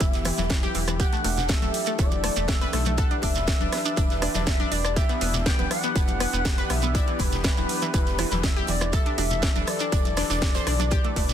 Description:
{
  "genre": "progressive house",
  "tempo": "121 BPM",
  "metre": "4/4",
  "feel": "straight",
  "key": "unclear",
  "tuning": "A4 = 441 Hz",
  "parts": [
    { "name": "expressive synth lead", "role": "melody", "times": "0.0-11.3 s", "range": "B4 to G5", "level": "-30 LUFS", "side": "equal", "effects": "lush chorus, sidechain pumping, dub echo" },
    { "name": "warm analog pad", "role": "sustained chords", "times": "0.0-11.3 s", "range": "E3 to B4", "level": "-33 LUFS", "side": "equal", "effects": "chorus, sidechain pumping" },
    { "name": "analog pluck", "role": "arpeggios", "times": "0.0-11.2 s", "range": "E3 to C5", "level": "-31 LUFS", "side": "left 1 dB", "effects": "chorus, sidechain pumping, dub echo" },
    { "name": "round analog bass", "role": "bass", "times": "0.0-11.3 s", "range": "E1 to B1", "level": "-29 LUFS", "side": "equal", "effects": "sidechain pumping" },
    { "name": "electronic kick drum", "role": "drums", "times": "0.0-11.3 s", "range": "none", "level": "-24 LUFS", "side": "equal", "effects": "overdrive" },
    { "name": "house drum kit", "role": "drums", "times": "0.0-11.3 s", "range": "hi-hat, rim click, snare drum", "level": "-30 LUFS", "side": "right 1 dB", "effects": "overdrive" },
    { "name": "huge arena drum kit", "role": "drums", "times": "0.0-11.3 s", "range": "hi-hat, snare drum", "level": "-38 LUFS", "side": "right 3 dB", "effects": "none" },
    { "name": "shekere", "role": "percussion", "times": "0.0-11.3 s", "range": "none", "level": "-35 LUFS", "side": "right 8 dB", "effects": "none" },
    { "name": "bongos and congas", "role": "percussion", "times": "0.3-11.3 s", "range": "none", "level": "-36 LUFS", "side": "left 5 dB", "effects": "sidechain pumping on perc" }
  ],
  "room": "small room ambience",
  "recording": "dense, heavily limited modern master",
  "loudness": "-21 LUFS",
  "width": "side -10 dB against mid",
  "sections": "0.0-11.3 A section",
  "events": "none",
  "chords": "0.0 Em; 1.0 Dsus4/E; 5.0 Em7; 8.9 Dsus4/E"
}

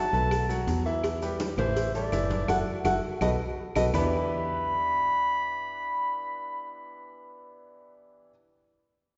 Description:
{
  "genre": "latin, salsa",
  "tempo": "165 BPM",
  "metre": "4/4",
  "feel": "straight",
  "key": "E minor",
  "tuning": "A4 = 440 Hz",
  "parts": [
    { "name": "dark clarinet", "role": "melody", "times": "0.0-7.6 s", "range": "C5 to B5", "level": "-31 LUFS", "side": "equal", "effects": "none" },
    { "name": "bright upright piano", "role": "accompaniment", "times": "0.0-8.3 s", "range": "E3 to F#5", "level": "-35 LUFS", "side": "equal", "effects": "none" },
    { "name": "fingered electric bass", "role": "bass", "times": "0.0-8.3 s", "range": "F#1 to E2", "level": "-33 LUFS", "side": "equal", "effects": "none" },
    { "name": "congas", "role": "percussion", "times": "0.1-4.0 s", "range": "none", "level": "-39 LUFS", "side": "equal", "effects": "none" },
    { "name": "maracas", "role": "percussion", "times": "0.1-4.0 s", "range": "none", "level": "-51 LUFS", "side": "equal", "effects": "none" },
    { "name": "claves", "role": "percussion", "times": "0.3-4.0 s", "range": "none", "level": "-47 LUFS", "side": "equal", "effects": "none" },
    { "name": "cowbell and bongos", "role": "percussion", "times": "0.3-4.0 s", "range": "none", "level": "-39 LUFS", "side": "equal", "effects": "none" }
  ],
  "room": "wet concert hall reverb, RT60 2.0 s",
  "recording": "recorded in a church or concert hall, nothing above 7.6 kHz",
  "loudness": "-28 LUFS",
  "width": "mono",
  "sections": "0.0-3.9 A section; 3.9-6.8 B section",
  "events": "band accent 2.5-3.9",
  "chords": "0.3 B5; 1.0 Em; 1.8 A5; 2.5 F#m7; 3.2 B7; 3.9 Em7"
}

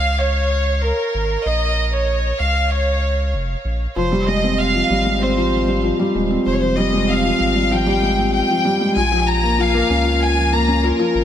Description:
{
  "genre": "piano and strings electronica",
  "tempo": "96 BPM",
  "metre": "4/4",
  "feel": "straight",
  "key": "unclear",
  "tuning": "A4 = 438 Hz",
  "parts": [
    { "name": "dark chamber violin section", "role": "melody", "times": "0.0-11.2 s", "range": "Bb4 to Bb5", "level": "-20 LUFS", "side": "equal", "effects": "none" },
    { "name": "round analog bass", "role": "bass", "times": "0.0-11.2 s", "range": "Eb1 to Db2", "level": "-21 LUFS", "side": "equal", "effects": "none" },
    { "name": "felt-muted upright piano", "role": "riff", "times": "4.0-11.2 s", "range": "F3 to F4", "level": "-18 LUFS", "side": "left 1 dB", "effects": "none" }
  ],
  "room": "moderate huge ambient reverb, RT60 4.9 s",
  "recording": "none",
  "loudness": "-15 LUFS",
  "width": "side -10 dB against mid",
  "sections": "0.0-11.2 A section",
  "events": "none",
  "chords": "0.0 Bbm; 4.0 Fmadd9; 9.0 Bbm"
}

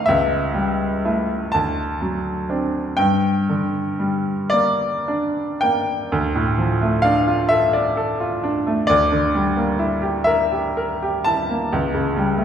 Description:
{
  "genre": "classical, romantic nocturne for solo piano",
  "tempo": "35-47 BPM (dotted quarters)",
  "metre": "6/8",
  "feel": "rubato",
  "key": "D minor from 6.1 s",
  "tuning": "A4 = 441 Hz",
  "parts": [
    { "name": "bright baby grand piano", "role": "solo", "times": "0.0-12.4 s", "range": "C#2 to Bb5", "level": "-18 LUFS", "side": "equal", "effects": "none" }
  ],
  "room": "wet recital hall reverb, RT60 1.7 s",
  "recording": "heard from further back in the room",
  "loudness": "-18 LUFS",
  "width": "side -8 dB against mid",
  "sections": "0.0-6.1 A section; 6.1-12.4 B section",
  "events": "none",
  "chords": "0.1 A7/C#; 1.5 D7; 3.0 Gm; 6.1 Dm; 8.9 Em7b5/D; 11.7 A7/C#"
}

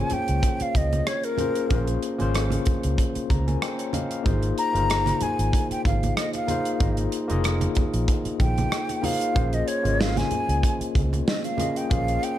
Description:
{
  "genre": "lush 1970s-style soul",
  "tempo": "94 BPM",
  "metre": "4/4",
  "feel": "swing 54% on 16ths",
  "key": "Bb dorian",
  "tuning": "A4 = 439 Hz",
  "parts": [
    { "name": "breathy concert flute", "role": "melody", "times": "0.0-12.4 s", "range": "Bb4 to Bb5", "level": "-27 LUFS", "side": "equal", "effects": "none" },
    { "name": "overdriven tine electric piano", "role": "accompaniment", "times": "0.0-12.4 s", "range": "Bb3 to Bb5", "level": "-28 LUFS", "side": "left 3 dB", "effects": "auto-pan" },
    { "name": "vintage muted fingered electric bass", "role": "bass", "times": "0.1-12.2 s", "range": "F1 to Db2", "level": "-25 LUFS", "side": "equal", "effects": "none" },
    { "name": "modern studio drum kit", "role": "drums", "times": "0.1-12.4 s", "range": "hi-hat, kick drum, rim click, snare drum", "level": "-26 LUFS", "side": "equal", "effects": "none" },
    { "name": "congas", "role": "percussion", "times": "0.1-12.1 s", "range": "none", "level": "-33 LUFS", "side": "right 4 dB", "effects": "none" }
  ],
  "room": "small room ambience",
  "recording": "dark, warm production",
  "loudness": "-21 LUFS",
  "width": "side -12 dB against mid",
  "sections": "0.0-12.4 A section",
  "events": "flute solo 0.0-12.4; tine electric piano fill 3.0-4.3",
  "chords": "0.0 Bbm7; 4.3 Ab69; 9.4 Bbm7"
}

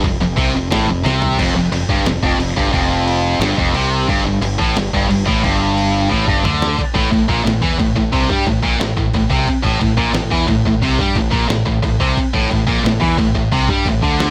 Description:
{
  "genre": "heavy metal",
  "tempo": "178 BPM",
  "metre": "4/4",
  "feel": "straight",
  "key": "A minor",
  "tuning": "A4 = 440 Hz",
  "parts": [
    { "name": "heavy high-gain guitar", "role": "riff", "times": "0.0-14.3 s", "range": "F2 to G3", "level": "-18 LUFS", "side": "equal", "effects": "distortion" },
    { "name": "growling fingered electric bass", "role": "bass", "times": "0.0-14.3 s", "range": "F1 to G2", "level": "-24 LUFS", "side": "equal", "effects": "overdrive" },
    { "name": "dusty soul sampler-style drum kit", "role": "drums", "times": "0.0-14.3 s", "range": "crash cymbal, kick drum, snare drum, toms", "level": "-23 LUFS", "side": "equal", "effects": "none" }
  ],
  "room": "little or no reverb",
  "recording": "none",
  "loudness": "-16 LUFS",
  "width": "mono",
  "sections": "0.0-6.8 A section; 6.8-14.3 B section",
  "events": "drum fill 1.0-1.4, 6.1-6.8",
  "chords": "0.0 F5; 4.1 G5; 6.8 Am"
}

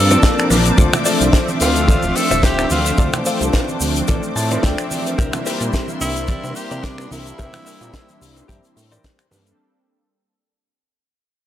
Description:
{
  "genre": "nu-disco, nu disco",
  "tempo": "109 BPM",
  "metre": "4/4",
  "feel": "swing 55% on 16ths",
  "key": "unclear",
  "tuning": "A4 = 440 Hz",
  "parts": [
    { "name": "raspy tenor saxophone", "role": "melody", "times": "0.0-9.0 s", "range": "D4 to A4", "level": "-24 LUFS", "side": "equal", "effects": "analog delay" },
    { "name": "warm analog pad", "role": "accompaniment", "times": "0.0-9.6 s", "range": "F3 to A5", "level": "-21 LUFS", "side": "equal", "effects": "chorus, sidechain pumping" },
    { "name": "bright studio string section", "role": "sustained chords", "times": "0.0-9.5 s", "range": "Bb3 to D6", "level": "-30 LUFS", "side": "left 3 dB", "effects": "sidechain pumping" },
    { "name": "fat analog bass", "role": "bass", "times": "0.0-9.5 s", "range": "D1 to C3", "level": "-21 LUFS", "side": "equal", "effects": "transformer saturation, sidechain pumping" },
    { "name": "direct-recorded clean electric guitar", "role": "riff", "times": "0.1-9.3 s", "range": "F4 to A5", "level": "-25 LUFS", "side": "left 4 dB", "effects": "analog chorus, vintage 12-bit sampler grit" },
    { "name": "tight funk drum kit", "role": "drums", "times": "0.1-9.6 s", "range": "finger snaps, hi-hat, shaker, snare drum", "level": "-22 LUFS", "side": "left 1 dB", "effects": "none" },
    { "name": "congas and bongos", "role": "percussion", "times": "0.1-9.4 s", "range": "none", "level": "-27 LUFS", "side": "right 2 dB", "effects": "none" },
    { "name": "kick drum", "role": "drums", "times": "0.2-9.2 s", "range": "none", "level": "-16 LUFS", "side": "equal", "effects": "none" }
  ],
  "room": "light reverb, small room ambience",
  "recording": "dry, gritty hardware recording, transformer saturation",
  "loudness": "-15 LUFS",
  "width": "side -12 dB against mid",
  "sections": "0.0-9.6 A section",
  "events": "drop 0.0-9.6; clean electric guitar fill 0.0-0.8, 4.1-5.2; fade-out 0.8-9.6",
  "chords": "0.0 Bbmaj7; 0.8 Dm7; 5.2 C7"
}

